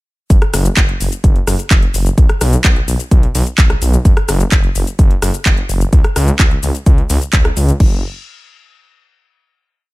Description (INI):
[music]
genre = EDM, festival progressive house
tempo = 128 BPM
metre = 4/4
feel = straight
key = unclear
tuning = A4 = 440 Hz
[part]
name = detuned saw bass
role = bass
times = 0.3-8.0 s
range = F#1 to C#2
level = -16 LUFS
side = equal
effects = sidechain pumping
[part]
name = electronic kick drum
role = drums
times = 0.3-7.9 s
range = none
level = -10 LUFS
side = equal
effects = none
[part]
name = house drum kit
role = drums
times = 0.3-7.9 s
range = crash cymbal, handclaps, hi-hat, rim click, shaker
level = -18 LUFS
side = equal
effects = none
[sound]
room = digital ambience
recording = none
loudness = -10 LUFS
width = side -20 dB against mid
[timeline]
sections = 0.3-7.8 drop; 7.8-9.7 final note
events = drop 0.3-7.8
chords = none